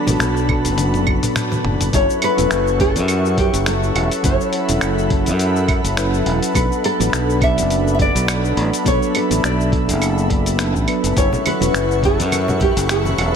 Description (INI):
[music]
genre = sunset chillout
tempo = 104 BPM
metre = 4/4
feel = swing 56% on 16ths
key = unclear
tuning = A4 = 440 Hz
[part]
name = soft electric-piano-like synth keys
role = accompaniment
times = 0.0-13.4 s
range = F#3 to D5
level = -22 LUFS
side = equal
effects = chorus, auto-pan, ping-pong delay
[part]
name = airy breathy pad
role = sustained chords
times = 0.0-13.4 s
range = D4 to C#6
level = -24 LUFS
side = right 1 dB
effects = chorus
[part]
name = twinkling granular texture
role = texture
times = 0.0-1.9, 11.4-13.4 s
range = B4 to B5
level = -34 LUFS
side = right 2 dB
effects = none
[part]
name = fingered electric bass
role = bass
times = 0.1-13.3 s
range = E1 to F#2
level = -20 LUFS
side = equal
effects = none
[part]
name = dusty soul sampler-style drum kit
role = drums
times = 0.1-13.3 s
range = claves, finger snaps, hi-hat, shaker, toms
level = -24 LUFS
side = equal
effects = none
[part]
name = congas and bongos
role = percussion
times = 0.1-1.6, 11.2-13.3 s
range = none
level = -27 LUFS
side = left 3 dB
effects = none
[part]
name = electronic kick drum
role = drums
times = 0.5-12.7 s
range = none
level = -20 LUFS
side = equal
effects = none
[part]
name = nylon-string guitar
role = melody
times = 1.9-13.4 s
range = G4 to E5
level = -21 LUFS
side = left 1 dB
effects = ping-pong delay
[sound]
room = light reverb, digital ambience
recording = none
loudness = -15 LUFS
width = side -7 dB against mid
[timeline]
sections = 0.0-1.9 A section; 1.9-13.4 B section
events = filter sweep on synth keys 0.0-1.9; drum fill 0.8-1.9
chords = 0.0 Bm7; 1.9 F#m7; 6.5 Bm7; 11.2 F#m7